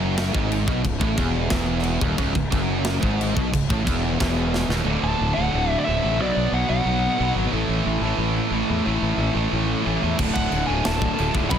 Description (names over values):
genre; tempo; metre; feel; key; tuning
heavy metal; 180 BPM; 4/4; straight; C# phrygian; A4 = 440 Hz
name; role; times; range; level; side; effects
distorted electric guitar; riff; 0.0-11.6 s; C#2 to B3; -28 LUFS; left 1 dB; distortion
high-gain distorted guitar; riff; 0.0-11.6 s; C#2 to B3; -26 LUFS; right 9 dB; distortion
sludgy distorted guitar; riff; 0.0-11.6 s; C#2 to F#3; -29 LUFS; left 14 dB; overdrive
fuzz fingered electric bass; bass; 0.0-11.6 s; C#1 to E2; -25 LUFS; equal; overdrive
tight metal drum kit; drums; 0.2-4.8, 10.2-11.6 s; china cymbal, crash cymbal, kick drum, snare drum; -26 LUFS; equal; soft clipping on kick
high-gain lead guitar; melody; 5.0-7.3, 10.3-11.6 s; D5 to B5; -25 LUFS; equal; distortion
room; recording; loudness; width
light reverb; dense, heavily limited modern master; -20 LUFS; side -8 dB against mid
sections
0.0-4.9 A section; 4.9-11.6 B section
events
drum fill 4.5-4.9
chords
0.0 C#m; 4.9 D; 6.2 Bm; 7.5 A5; 10.2 D